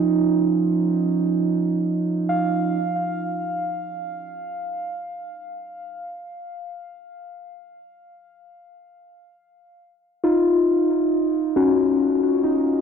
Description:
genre	ambient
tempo	free time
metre	none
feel	none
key	unclear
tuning	A4 = 441 Hz
part	muted felt-like synth keys	solo	0.0-12.8 s	E#3 to E#5	-20 LUFS	right 1 dB	chorus, tape echo
room	wet cathedral reverb, RT60 5.3 s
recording	dark, warm production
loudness	-19 LUFS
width	side -7 dB against mid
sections	0.0-9.8 A section; 9.8-12.8 B section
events	none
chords	0.0 N.C.; 9.8 F#5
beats	free time

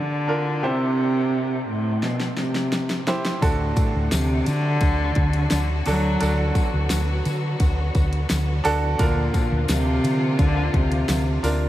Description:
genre	piano-driven pop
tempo	86 BPM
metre	4/4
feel	straight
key	D mixolydian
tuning	A4 = 440 Hz
part	dark cello	melody	0.0-11.4 s	A2 to F#3	-24 LUFS	equal	none
part	bright grand piano	accompaniment	0.0-11.7 s	C3 to C5	-28 LUFS	right 2 dB	none
part	pop drum kit	drums	2.0-11.6 s	hi-hat, kick drum, ride cymbal, snare drum	-25 LUFS	equal	none
part	muted studio string section	sustained chords	3.4-11.7 s	D3 to F#4	-32 LUFS	left 1 dB	none
part	hollow-body short-scale fingered electric bass	bass	3.4-11.7 s	D2 to D3	-23 LUFS	equal	none
part	tambourine	percussion	3.4-11.6 s	none	-40 LUFS	left 6 dB	none
room	moderate huge ambient reverb, RT60 8.8 s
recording	dreamy mix soaked in reverb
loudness	-19 LUFS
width	side -14 dB against mid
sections	0.0-11.7 A section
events	drum fill 2.0-3.4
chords	0.0 Bb; 0.6 C; 3.4 D; 9.0 Bb/D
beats	| 0.64 1.33 2.03 2.73 | 3.42 4.12 4.82 5.51 | 6.21 6.91 7.61 8.30 | 9.00 9.70 10.39 11.09

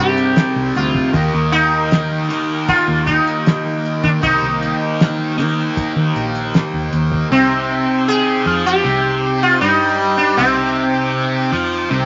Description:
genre	psychedelic rock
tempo	78 BPM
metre	4/4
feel	straight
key	C minor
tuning	A4 = 440 Hz
part	sitar	melody	0.0-11.9 s	C4 to Ab4	-20 LUFS	equal	none
part	bright tonewheel organ	sustained chords	0.0-12.1 s	Eb4 to D6	-29 LUFS	equal	fast rotary speaker
part	fuzz guitar	riff	0.0-12.1 s	C3 to G4	-20 LUFS	equal	distortion, phaser
part	fingered electric bass	bass	0.0-12.1 s	Bb1 to Eb3	-24 LUFS	equal	none
part	cloth-damped thuddy drum kit	drums	0.2-7.3 s	hi-hat, kick drum, snare drum	-20 LUFS	equal	none
room	moderate studio reverb, RT60 0.9 s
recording	vinyl crackle, nothing above 7.6 kHz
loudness	-16 LUFS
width	mono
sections	0.0-7.3 A section; 7.3-12.1 B section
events	none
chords	0.0 Cm; 1.1 Eb; 7.3 Cm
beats	0.36 | 1.14 1.91 2.69 3.46 | 4.23 5.00 5.77 6.54 | 7.31 8.08 8.85 9.62 | 10.38 11.15 11.92

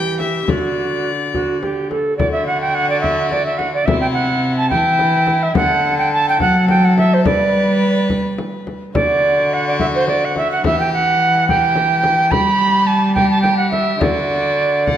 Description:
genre	classical, renaissance-style consort dance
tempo	71 BPM (dotted quarters)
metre	6/8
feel	straight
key	D mixolydian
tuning	A4 = 436 Hz
part	rich violin	melody	0.0-15.0 s	E4 to G5	-25 LUFS	left 5 dB	none
part	mellow alto recorder	second line	0.0-15.0 s	F#4 to B5	-16 LUFS	right 2 dB	none
part	warm cello	bass	0.0-15.0 s	C3 to G3	-20 LUFS	equal	none
part	frame drum	percussion	0.2-15.0 s	none	-22 LUFS	left 3 dB	none
room	wet recital hall reverb, RT60 1.6 s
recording	none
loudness	-14 LUFS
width	side -10 dB against mid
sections	0.0-2.2 A section; 2.2-15.0 A section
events	none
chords	0.5 D; 3.9 C; 5.6 D; 7.2 G; 9.0 D; 10.6 Em; 12.3 G; 14.0 D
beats	| 0.49 1.34 | 2.20 3.04 | 3.88 4.72 | 5.56 6.40 | 7.25 8.10 | 8.95 9.80 | 10.64 11.48 | 12.31 13.15 | 14.00 14.86

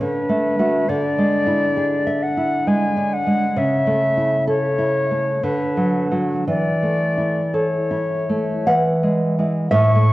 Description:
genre	romantic duo for flute and classical guitar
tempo	52-69 BPM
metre	3/4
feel	rubato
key	A major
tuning	A4 = 435 Hz
part	concert flute	melody	0.0-10.1 s	B4 to C#6	-22 LUFS	left 2 dB	none
part	nylon-string guitar	accompaniment	0.0-10.1 s	A2 to F#5	-18 LUFS	right 1 dB	none
room	wet scoring stage reverb, RT60 1.8 s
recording	worn, warbling old tape, cassette tape, warbly pitch drift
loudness	-17 LUFS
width	side -17 dB against mid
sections	0.0-9.7 A section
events	none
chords	0.0 D; 0.9 E7/D; 3.6 A/C#; 5.4 Bm/D; 6.5 A/E; 8.7 E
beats	0.00 | 0.88 1.76 2.67 | 3.57 4.47 5.43 | 6.48 7.55 8.68 | 9.72

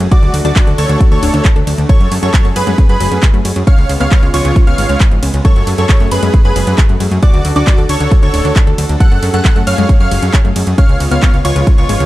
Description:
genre	uplifting trance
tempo	135 BPM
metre	4/4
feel	straight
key	F# harmonic minor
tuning	A4 = 441 Hz
part	supersaw pad	sustained chords	0.0-12.1 s	C#3 to A4	-23 LUFS	right 1 dB	sidechain pumping
part	plucky analog bass	bass	0.0-12.1 s	D1 to F#2	-15 LUFS	equal	sidechain pumping
part	big-room dance drum kit	drums	0.0-12.1 s	handclaps, hi-hat, ride cymbal	-22 LUFS	right 1 dB	sidechain pumping on hats, sidechain pumping on cymbals
part	dense compressed supersaw	melody	0.1-12.1 s	E#4 to F#5	-19 LUFS	right 1 dB	sidechain pumping, digital delay
part	plucky unison lead	second line	0.1-12.1 s	B5 to F#6	-24 LUFS	equal	sidechain pumping, digital delay
part	wide unison pluck	arpeggios	0.1-12.0 s	E#3 to F#5	-22 LUFS	left 3 dB	sidechain pumping, digital delay
part	electronic kick drum	drums	0.1-11.8 s	none	-9 LUFS	equal	none
room	digital ambience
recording	dark, warm production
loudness	-9 LUFS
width	side -16 dB against mid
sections	0.0-12.1 A section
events	none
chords	0.1 D; 1.9 F#madd9; 3.7 C#7; 5.4 F#madd9; 7.2 D; 9.0 F#madd9; 10.8 C#7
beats	| 0.12 0.56 1.00 1.45 | 1.89 2.34 2.78 3.23 | 3.67 4.12 4.56 5.00 | 5.45 5.89 6.34 6.78 | 7.23 7.67 8.12 8.56 | 9.00 9.45 9.89 10.34 | 10.78 11.23 11.67

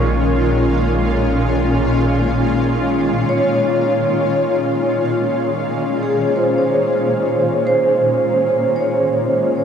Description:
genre	ambient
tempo	55 BPM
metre	4/4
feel	straight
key	unclear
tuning	A4 = 440 Hz
part	pedal steel guitar	melody	0.0-2.7 s	Db5	-35 LUFS	right 1 dB	none
part	shimmering ambient pad	sustained chords	0.0-9.6 s	Bb2 to F4	-17 LUFS	equal	chorus, built-in reverb, shimmer reverb
part	vibraphone with medium mallets	arpeggios	0.0-9.6 s	Ab4 to Db5	-18 LUFS	equal	shimmer reverb, diffuse ambient delay
part	warm sub bass	bass	0.0-3.2 s	Bb1	-22 LUFS	equal	none
room	wet cathedral reverb, RT60 6.0 s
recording	in a vast, echoing space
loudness	-14 LUFS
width	side -7 dB against mid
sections	0.0-3.3 A section; 3.3-9.6 B section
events	none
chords	0.0 Bbm7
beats	1.06 2.18 | 3.29 4.39 5.49 6.58 | 7.66 8.75

